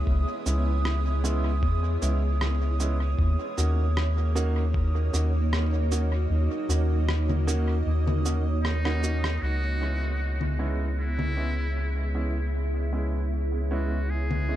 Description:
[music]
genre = ambient dub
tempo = 77 BPM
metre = 4/4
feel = swing 53% on 16ths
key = C# dorian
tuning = A4 = 440 Hz
[part]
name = granular cloud pad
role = sustained chords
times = 0.0-14.6 s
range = A#3 to E5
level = -34 LUFS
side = right 1 dB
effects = built-in reverb
[part]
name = soft dub sub bass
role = bass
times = 0.0-14.6 s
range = C#2 to E2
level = -25 LUFS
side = equal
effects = none
[part]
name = bubbling stepped-filter texture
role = texture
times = 0.0-9.4 s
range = D#6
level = -40 LUFS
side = right 6 dB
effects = chorus, built-in reverb
[part]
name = electronic kick drum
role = drums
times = 0.1-4.9 s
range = none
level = -28 LUFS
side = equal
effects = none
[part]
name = warm upright piano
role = stabs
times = 0.5-14.6 s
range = G#3 to F#4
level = -35 LUFS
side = right 2 dB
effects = low-pass filter, dub echo
[part]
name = electronic cabasa, rim click and congas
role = drums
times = 0.5-14.5 s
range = none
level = -35 LUFS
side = left 1 dB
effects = dub echo
[part]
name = trumpet with metal mute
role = melody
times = 8.6-14.6 s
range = D#4 to G#4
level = -35 LUFS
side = equal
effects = dub echo
[sound]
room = digital ambience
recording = none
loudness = -24 LUFS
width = side -13 dB against mid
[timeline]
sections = 0.0-9.4 A section; 9.4-14.6 B section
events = kick drops out 6.3-9.4; drum fill 8.6-9.4; filter sweep on ambient pad 9.4-14.6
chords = 0.0 C#m7; 3.2 D#m7; 9.4 C#m7

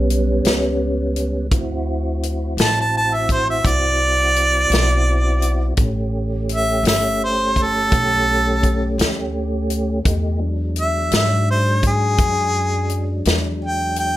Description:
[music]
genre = slow blues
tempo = 56 BPM (dotted quarters)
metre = 12/8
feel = straight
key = A mixolydian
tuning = A4 = 440 Hz
[part]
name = mellow tonewheel organ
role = sustained chords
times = 0.0-14.2 s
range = F#3 to G4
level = -24 LUFS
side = equal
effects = chorus vibrato, slow rotary speaker
[part]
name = upright bass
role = bass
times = 0.0-14.2 s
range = G1 to G#2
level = -21 LUFS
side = equal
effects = none
[part]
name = natural country drum kit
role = drums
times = 0.1-14.1 s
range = hi-hat, kick drum, snare drum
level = -20 LUFS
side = left 1 dB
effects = none
[part]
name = clear harmonica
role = melody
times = 2.6-14.2 s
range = G#4 to A5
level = -18 LUFS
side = equal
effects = none
[sound]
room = light reverb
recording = none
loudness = -16 LUFS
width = side -14 dB against mid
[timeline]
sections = 0.0-14.2 A section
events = none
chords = 0.0 A9 (rootless); 1.5 D9; 5.8 A9; 10.0 E9

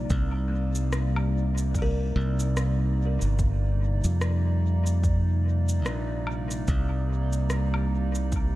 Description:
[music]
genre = ambient dub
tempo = 73 BPM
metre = 4/4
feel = swing 58% on 16ths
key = C minor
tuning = A4 = 440 Hz
[part]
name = warbly tape-like pad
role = sustained chords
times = 0.0-8.6 s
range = C3 to D5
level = -32 LUFS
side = equal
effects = chorus, built-in reverb, vintage 12-bit sampler grit
[part]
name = buzzing kalimba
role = arpeggios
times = 0.0-5.1 s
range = Bb3 to F5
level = -40 LUFS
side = left 2 dB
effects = tape echo
[part]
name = modern bright fingered electric bass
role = bass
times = 0.0-8.6 s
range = G1 to F2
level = -24 LUFS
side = equal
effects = none
[part]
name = electronic kick drum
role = drums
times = 0.1-8.5 s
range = none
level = -27 LUFS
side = equal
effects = small room ambience
[part]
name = electronic shaker, rim click and woodblock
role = drums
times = 0.1-8.5 s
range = none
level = -36 LUFS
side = left 1 dB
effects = small room ambience, dub echo
[sound]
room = little or no reverb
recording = none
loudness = -23 LUFS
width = side -16 dB against mid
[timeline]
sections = 0.0-8.6 A section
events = none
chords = 0.0 Cm7

